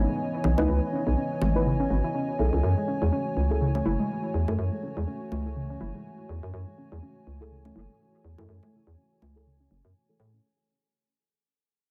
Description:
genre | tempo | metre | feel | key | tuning
deep house | 123 BPM | 4/4 | swing 57% on 16ths | unclear | A4 = 441 Hz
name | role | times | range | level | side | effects
dark analog pad | sustained chords | 0.0-10.4 s | E3 to G#5 | -35 LUFS | equal | chorus
hollow knocking FM bass | bass | 0.0-10.4 s | F#1 to A2 | -29 LUFS | equal | tube saturation
warbly dusty pluck | arpeggios | 0.1-10.4 s | C#3 to F#4 | -34 LUFS | equal | chorus, tape echo
congas | percussion | 0.4-10.3 s | none | -35 LUFS | equal | overdrive
deep mellow chord stab | stabs | 0.6-10.4 s | D#4 to B4 | -35 LUFS | equal | chorus, phaser, tape echo
room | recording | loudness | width
light reverb | none | -27 LUFS | mono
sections
0.0-10.4 A section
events
fade-out 0.0-10.4; filter sweep on synth stab 0.0-10.4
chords
0.0 C#m9; 2.6 F#m9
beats
0.20 | 0.68 1.17 1.66 2.15 | 2.63 3.12 3.61 4.10 | 4.59 5.07 5.56 6.05 | 6.54 7.03 7.51 8.00 | 8.49 8.98 9.46 9.95

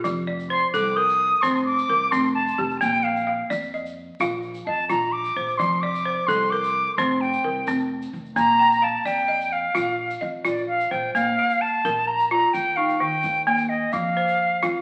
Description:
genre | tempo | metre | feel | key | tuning
west african traditional, West African string and xylophone music | 86 BPM (dotted quarters) | 12/8 | straight | unclear | A4 = 440 Hz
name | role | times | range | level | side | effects
balafon | arpeggios | 0.0-14.8 s | Eb3 to G5 | -28 LUFS | equal | none
egg shaker | percussion | 0.0-14.7 s | none | -51 LUFS | equal | none
upright bass | bass | 0.1-14.8 s | F1 to F2 | -38 LUFS | equal | none
bright concert flute | melody | 0.5-14.8 s | D5 to Eb6 | -24 LUFS | equal | none
room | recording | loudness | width
wet large studio reverb, RT60 1.2 s | very old 78 rpm record, vinyl crackle | -22 LUFS | mono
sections
0.0-11.1 A section; 11.1-14.8 B section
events
flute solo 0.0-11.1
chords
0.0 F; 2.8 Bb; 5.6 F; 8.4 Bb; 11.1 Bb5; 12.5 Eb; 13.9 F5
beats
| 0.05 0.74 1.43 2.12 | 2.82 3.51 4.20 4.90 | 5.59 6.28 6.98 7.67 | 8.37 9.06 9.75 10.45 | 11.14 11.84 12.54 13.23 | 13.93 14.63

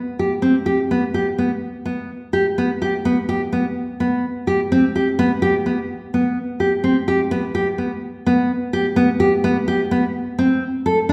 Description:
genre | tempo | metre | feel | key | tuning
contemporary instrumental, contemporary | 253 BPM (eighths) | 9/8 | straight | unclear | A4 = 439 Hz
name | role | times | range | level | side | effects
nylon-string guitar | solo | 0.2-11.1 s | B3 to A4 | -20 LUFS | equal | none
room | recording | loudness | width
wet recital hall reverb, RT60 1.7 s | recorded in a church or concert hall | -20 LUFS | mono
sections
0.0-8.0 A section; 8.0-11.1 B section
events
none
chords
none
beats
0.20 0.44 0.68 0.91 1.15 1.39 | 1.62 1.86 2.10 2.34 2.57 2.81 3.05 3.28 3.52 | 3.76 4.00 4.23 4.47 4.71 4.94 5.18 5.42 5.66 | 5.89 6.13 6.37 6.60 6.84 7.08 7.31 7.55 7.79 | 8.03 8.26 8.50 8.74 8.97 9.21 9.45 9.68 9.92 | 10.16 10.39 10.63 10.87 11.10

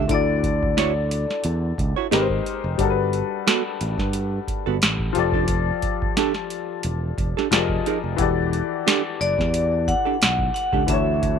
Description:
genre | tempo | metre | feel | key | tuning
R&B, neo-soul | 89 BPM | 4/4 | swing 54% on 16ths | unclear | A4 = 440 Hz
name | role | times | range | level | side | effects
vibraphone with hard mallets | melody | 0.0-1.4, 9.2-11.4 s | D5 to F#5 | -24 LUFS | left 1 dB | tape echo
hollow-body jazz guitar | second line | 0.0-10.8 s | B3 to C#5 | -25 LUFS | right 16 dB | none
warm upright piano | accompaniment | 0.0-11.4 s | D3 to Eb5 | -25 LUFS | left 11 dB | none
fingered electric bass | bass | 0.0-11.4 s | E1 to G2 | -24 LUFS | right 1 dB | none
booming analog drum machine | drums | 0.1-11.4 s | hi-hat, kick drum, snare drum | -24 LUFS | right 1 dB | none
room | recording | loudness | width
light reverb | 1960s-style stereo with parts hard left and right | -20 LUFS | side -7 dB against mid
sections
0.0-11.4 A section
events
none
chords
0.1 Dadd9; 2.1 G#maj9; 2.8 Gmaj9; 5.2 F69; 7.5 Fm11; 8.2 Em11; 10.9 Dmaj9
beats
| 0.09 0.77 1.44 2.12 | 2.79 3.46 4.14 4.81 | 5.49 6.16 6.84 7.51 | 8.18 8.86 9.53 10.21 | 10.88

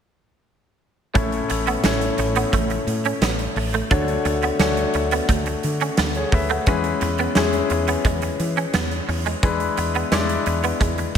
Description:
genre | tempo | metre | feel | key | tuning
1980s-style pop | 87 BPM | 4/4 | straight | A major | A4 = 442 Hz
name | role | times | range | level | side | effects
clear concert grand piano | accompaniment | 1.1-11.2 s | A2 to F#5 | -23 LUFS | left 4 dB | none
semi-hollow electric guitar | riff | 1.1-11.0 s | G#3 to D4 | -26 LUFS | right 6 dB | ensemble chorus, tape echo
woody fretless electric bass | bass | 1.2-11.2 s | A1 to E3 | -25 LUFS | equal | none
big rock drum kit | drums | 1.2-11.2 s | hi-hat, kick drum, snare drum | -24 LUFS | right 1 dB | gated reverb
room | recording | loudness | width
moderate concert hall reverb, RT60 2.1 s | none | -19 LUFS | side -8 dB against mid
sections
1.2-11.2 A section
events
none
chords
1.2 A; 3.9 Dmaj7; 6.7 C#m7/E; 9.4 E7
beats
| 1.15 1.84 2.53 3.22 | 3.91 4.60 5.29 5.98 | 6.67 7.36 8.05 8.74 | 9.43 10.12 10.81

